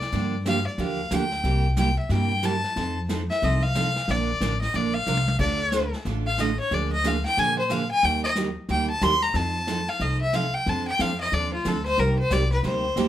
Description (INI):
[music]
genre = country, western swing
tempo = 182 BPM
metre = 4/4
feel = swing 63% on 8ths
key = Bb major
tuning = A4 = 436 Hz
[part]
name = clear fiddle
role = melody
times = 0.0-13.1 s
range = F4 to C6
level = -25 LUFS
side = left 2 dB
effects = none
[part]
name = vintage brush drum kit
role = drums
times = 0.0-13.1 s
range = brushed snare drum, crash cymbal, hi-hat, kick drum, snare drum, toms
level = -34 LUFS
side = left 1 dB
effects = none
[part]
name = picked steel-string acoustic guitar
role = accompaniment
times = 0.1-13.1 s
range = C3 to Bb4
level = -28 LUFS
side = right 4 dB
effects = none
[part]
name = upright bass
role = bass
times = 0.1-13.1 s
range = A1 to Bb2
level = -27 LUFS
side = left 1 dB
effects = none
[sound]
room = moderate studio reverb, RT60 0.5 s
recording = none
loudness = -22 LUFS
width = side -12 dB against mid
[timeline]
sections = 0.0-13.1 A section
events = fiddle solo 0.0-13.1; drum fill 5.1-5.4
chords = 0.1 Gm7; 1.4 C7; 2.8 F7; 4.1 Bb; 5.4 Dm; 6.7 Bb7/D; 8.0 Eb; 9.3 F7; 10.7 F6; 12.0 Cm7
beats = | 0.13 0.46 0.78 1.11 | 1.44 1.77 2.10 2.43 | 2.76 3.09 3.42 3.75 | 4.08 4.41 4.73 5.06 | 5.39 5.72 6.05 6.38 | 6.71 7.04 7.37 7.70 | 8.03 8.36 8.69 9.02 | 9.34 9.67 10.00 10.33 | 10.66 10.99 11.32 11.65 | 11.98 12.30 12.63 12.96